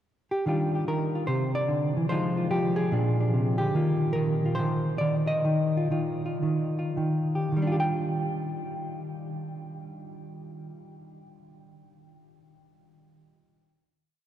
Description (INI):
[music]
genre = solo jazz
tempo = 99-148 BPM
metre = 4/4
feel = swing 67% on 8ths, rubato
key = Eb major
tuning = A4 = 441 Hz
[part]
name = hollow-body jazz guitar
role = solo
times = 0.3-12.2 s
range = Bb2 to G5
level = -25 LUFS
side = equal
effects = none
[sound]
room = wet cathedral reverb, RT60 7.7 s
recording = recorded in a church or concert hall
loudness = -25 LUFS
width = side -11 dB against mid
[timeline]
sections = 0.0-0.4 pickup bar; 0.4-7.5 A section; 7.5-12.2 final chord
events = slowing down 3.7-7.5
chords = 0.4 Ebmaj9; 1.3 C; 2.1 Fm7; 2.9 Bb9; 3.7 Ebadd9; 7.5 Ebmaj9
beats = 0.01 | 0.43 0.85 1.26 1.68 | 2.09 2.50 2.91 3.31 | 3.72 4.13 4.55 4.98 | 5.43 5.91 6.41 6.95 | 7.53 8.12 8.71 9.29 | 9.88 10.46 11.05 11.65